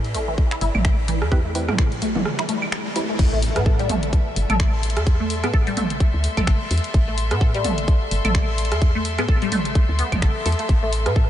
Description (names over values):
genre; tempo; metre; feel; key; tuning
minimal techno; 128 BPM; 4/4; swing 57% on 16ths; A minor; A4 = 440 Hz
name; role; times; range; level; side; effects
woody FM bass; bass; 0.0-11.3 s; G1 to A2; -24 LUFS; equal; tube saturation, sidechain pumping
garage drum kit; drums; 0.0-11.1 s; crash cymbal, finger snaps, hi-hat; -31 LUFS; left 2 dB; none
riser and impact; sound effects; 1.2-5.1 s; none; -32 LUFS; equal; none
pulsing gated texture; texture; 0.0-3.2 s; D5; -42 LUFS; left 1 dB; none
resonant blip pluck; riff; 0.1-11.2 s; E3 to A4; -26 LUFS; left 1 dB; phaser, ensemble chorus, sidechain pumping, analog delay
electronic kick drum; drums; 0.4-11.3 s; none; -18 LUFS; equal; none
minimal click drum kit; percussion; 0.7-11.1 s; claves, rim click, toms; -28 LUFS; right 3 dB; analog delay
filtered dub chord stab; stabs; 1.3-3.1 s; C4 to B4; -34 LUFS; right 2 dB; chorus, analog delay
bright studio string section; texture; 3.2-11.3 s; A4 to C6; -30 LUFS; left 4 dB; sidechain pumping
room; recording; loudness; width
light reverb; nothing above 10.5 kHz; -18 LUFS; side -11 dB against mid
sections
0.0-3.2 A section; 3.2-11.3 B section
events
riser 1.2-3.2; break 2.3-3.2; drop 3.2-11.3; impact 3.2-5.1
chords
0.0 A7(no3); 3.2 Am